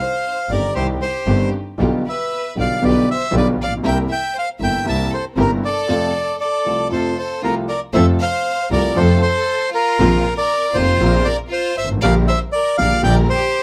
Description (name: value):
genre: tango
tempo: 117 BPM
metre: 4/4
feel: rubato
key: F major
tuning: A4 = 440 Hz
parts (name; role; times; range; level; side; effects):
- bandoneon; melody; 0.0-13.6 s; Bb4 to A5; -22 LUFS; equal; none
- bright studio violin section; second line; 0.0-13.6 s; F4 to E5; -29 LUFS; equal; none
- warm concert grand piano; accompaniment; 0.5-13.3 s; F1 to G4; -24 LUFS; equal; none
- dark studio string section; stabs; 0.5-13.3 s; B3 to Bb4; -29 LUFS; equal; tape echo
- clear double bass; bass; 0.5-13.2 s; F1 to F2; -21 LUFS; equal; none
room: light reverb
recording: none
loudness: -18 LUFS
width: mono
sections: 0.0-7.9 A section; 7.9-13.6 A section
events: none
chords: 0.0 Cm; 1.8 G7/B; 3.8 C7; 5.9 F; 10.0 Bbsus2; 12.0 Gm/Bb